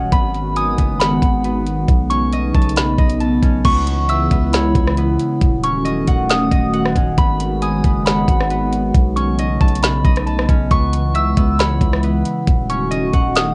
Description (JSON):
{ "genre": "hip hop, atmospheric cloud-rap", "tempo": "136 BPM", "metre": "4/4", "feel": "half-time", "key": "C# minor", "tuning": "A4 = 440 Hz", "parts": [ { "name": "warbly tape-like pad", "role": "sustained chords", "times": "0.0-13.5 s", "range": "C#3 to F#4", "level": "-23 LUFS", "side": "equal", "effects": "chorus, built-in reverb, phaser, sidechain pumping, cassette tape" }, { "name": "concert harp", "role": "arpeggios", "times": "0.0-13.5 s", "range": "B3 to A5", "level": "-27 LUFS", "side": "equal", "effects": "cassette tape, tape echo" }, { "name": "long sustained 808-style bass", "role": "bass", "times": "0.0-13.5 s", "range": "D#1 to C#2", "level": "-23 LUFS", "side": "equal", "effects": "none" }, { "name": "soft synth bell", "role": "melody", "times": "0.1-13.5 s", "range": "B5 to E6", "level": "-25 LUFS", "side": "equal", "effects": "chorus, phaser, cassette tape, tape echo" }, { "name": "smooth R&B drum kit", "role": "drums", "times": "0.1-13.5 s", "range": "crash cymbal, hi-hat, kick drum, rim click, snare drum", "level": "-19 LUFS", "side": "equal", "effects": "cassette tape" } ], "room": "moderate booth ambience, RT60 0.2 s", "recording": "home recording on cassette, nothing above 10.8 kHz", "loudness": "-16 LUFS", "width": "mono", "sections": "0.0-3.6 A section; 3.6-13.5 B section", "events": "none", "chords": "0.1 G#m7; 1.9 B9; 3.6 C#m7; 5.4 D#m7b5; 7.2 G#m7; 8.9 B9; 10.7 C#m7; 12.5 D#m7b5" }